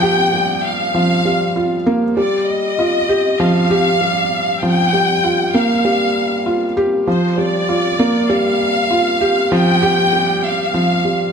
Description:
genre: electronica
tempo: 98 BPM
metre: 4/4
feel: straight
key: G minor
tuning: A4 = 440 Hz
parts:
  - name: warm symphonic violin section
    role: melody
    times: 0.0-11.3 s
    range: C5 to G5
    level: -17 LUFS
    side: left 1 dB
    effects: none
  - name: felt-muted upright piano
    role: riff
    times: 0.0-11.3 s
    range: F3 to G4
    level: -15 LUFS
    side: equal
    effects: none
room: moderate echo chamber reverb, RT60 1.9 s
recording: none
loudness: -13 LUFS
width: side -6 dB against mid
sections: 0.0-11.3 A section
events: none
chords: 0.0 Gm7

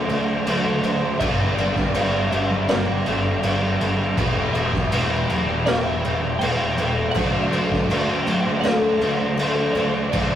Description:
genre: rock, shoegaze and dream pop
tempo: 81 BPM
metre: 4/4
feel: straight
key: unclear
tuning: A4 = 437 Hz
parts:
  - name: twelve-string electric guitar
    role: melody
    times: 0.0-10.4 s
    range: D5 to G5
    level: -31 LUFS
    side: equal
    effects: tremolo
  - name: picked twelve-string acoustic guitar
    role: arpeggios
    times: 0.0-10.4 s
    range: E4 to F#5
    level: -30 LUFS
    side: left 2 dB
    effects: none
  - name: cranked stack guitar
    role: riff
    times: 0.0-10.4 s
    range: D3 to C5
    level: -30 LUFS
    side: equal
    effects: overdrive
  - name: overdriven electric guitar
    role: riff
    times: 0.0-10.4 s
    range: D3 to C5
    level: -27 LUFS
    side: right 3 dB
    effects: none
  - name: thick fuzz guitar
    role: riff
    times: 0.0-10.4 s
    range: E2 to D4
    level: -27 LUFS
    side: left 2 dB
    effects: distortion
  - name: fuzz picked electric bass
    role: bass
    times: 0.0-10.4 s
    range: E1 to D2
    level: -27 LUFS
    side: equal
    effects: overdrive
  - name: raw garage drum kit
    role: drums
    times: 0.1-10.3 s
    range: crash cymbal, kick drum, snare drum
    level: -22 LUFS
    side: equal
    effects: none
room: wet booth ambience, RT60 0.1 s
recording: rough rehearsal-room recording, warm saturation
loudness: -18 LUFS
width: side -10 dB against mid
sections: 0.0-10.4 A section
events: none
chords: 0.0 D7; 1.2 Gmaj7; 4.2 Em; 7.1 D7

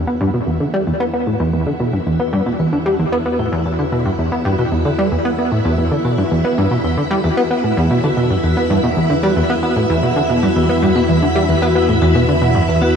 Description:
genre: ambient, sequencer-driven space music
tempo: 113 BPM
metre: 4/4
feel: straight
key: unclear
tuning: A4 = 440 Hz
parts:
  - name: string machine, full ensemble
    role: sustained chords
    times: 0.0-13.0 s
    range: E4 to B5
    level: -23 LUFS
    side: left 1 dB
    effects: ensemble chorus, shimmer reverb
  - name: plucky analog bass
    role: riff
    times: 0.0-12.9 s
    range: E2 to B3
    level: -15 LUFS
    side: equal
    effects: lush chorus, tape echo, shimmer reverb
  - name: analog drone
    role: bass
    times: 0.2-13.0 s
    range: E2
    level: -25 LUFS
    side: equal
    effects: chorus
  - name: vibraphone with medium hard mallets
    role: arpeggios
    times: 0.1-12.9 s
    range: E4 to E6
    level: -23 LUFS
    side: moving between left 4 dB and right 7 dB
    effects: auto-pan, tape echo, shimmer reverb
room: moderate plate reverb, RT60 3.5 s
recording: none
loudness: -14 LUFS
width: side -7 dB against mid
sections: 0.0-13.0 A section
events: fade-in on vibraphone 0.0-13.0; fade-in on string machine 0.0-13.0; fade-in on synth drone 0.0-13.0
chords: 0.0 Esus2

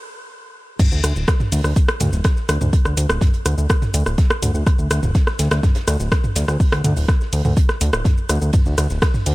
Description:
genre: melodic techno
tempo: 124 BPM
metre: 4/4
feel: straight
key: unclear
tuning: A4 = 442 Hz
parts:
  - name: deep house drum kit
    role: drums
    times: 0.8-9.3 s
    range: crash cymbal, hi-hat, ride cymbal, rim click, shaker, toms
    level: -22 LUFS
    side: equal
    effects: none
  - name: electronic kick drum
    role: drums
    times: 0.8-9.1 s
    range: none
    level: -16 LUFS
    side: equal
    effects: none
  - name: warm soul drum kit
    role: drums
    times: 0.8-9.3 s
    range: hi-hat, snare drum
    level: -35 LUFS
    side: right 4 dB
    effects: high-pass filter on hats, high-pass filter on snare, high-pass filter on room
  - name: fat analog bass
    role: bass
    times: 0.9-9.3 s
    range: D1 to D2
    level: -18 LUFS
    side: equal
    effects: sidechain pumping
room: digital ambience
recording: high-pass filter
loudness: -16 LUFS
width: side -20 dB against mid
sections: 0.8-9.3 A section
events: stop 0.0-0.8; drop 0.8-9.3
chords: none

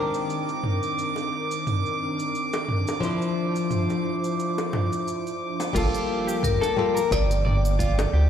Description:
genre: sunset chillout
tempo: 88 BPM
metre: 4/4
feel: swing 55% on 16ths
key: G minor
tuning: A4 = 440 Hz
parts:
  - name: flamenco guitar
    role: accompaniment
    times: 0.0-7.0 s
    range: Eb3 to C5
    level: -28 LUFS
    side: left 2 dB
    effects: auto-pan, tape echo
  - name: airy breathy pad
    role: sustained chords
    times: 0.0-8.3 s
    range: Eb3 to G5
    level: -32 LUFS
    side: left 1 dB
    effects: chorus
  - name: drifting glass-harmonics texture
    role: texture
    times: 0.0-8.3 s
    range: D6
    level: -31 LUFS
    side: right 3 dB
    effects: chorus, built-in reverb
  - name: deep house drum kit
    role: drums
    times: 0.1-8.1 s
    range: cabasa, crash cymbal, hi-hat, snare drum, toms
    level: -30 LUFS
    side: right 1 dB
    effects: low-pass filter on perc, low-pass filter on toms, low-pass filter on hats, low-pass filter on cymbals, low-pass filter on snare
  - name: bongos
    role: percussion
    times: 1.2-8.1 s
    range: none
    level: -33 LUFS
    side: left 1 dB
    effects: none
  - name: clean electric guitar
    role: arpeggios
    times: 5.7-8.3 s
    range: F4 to D5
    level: -32 LUFS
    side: equal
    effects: spring reverb, tape echo
  - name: round analog bass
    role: bass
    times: 5.7-8.3 s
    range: G1 to D2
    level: -21 LUFS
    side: equal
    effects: none
  - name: electronic kick drum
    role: drums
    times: 5.7-7.9 s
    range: none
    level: -29 LUFS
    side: equal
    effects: none
  - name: vibraphone with hard mallets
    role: melody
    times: 6.4-8.3 s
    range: Bb4 to D5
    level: -26 LUFS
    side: left 4 dB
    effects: vintage 12-bit sampler grit, tape echo
room: light reverb, digital ambience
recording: played on a big sound system in a bare room, stone room reverb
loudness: -22 LUFS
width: side -9 dB against mid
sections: 0.0-5.8 A section; 5.8-8.3 B section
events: none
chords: 0.0 Cm9; 3.0 Dm9; 5.8 Gm9

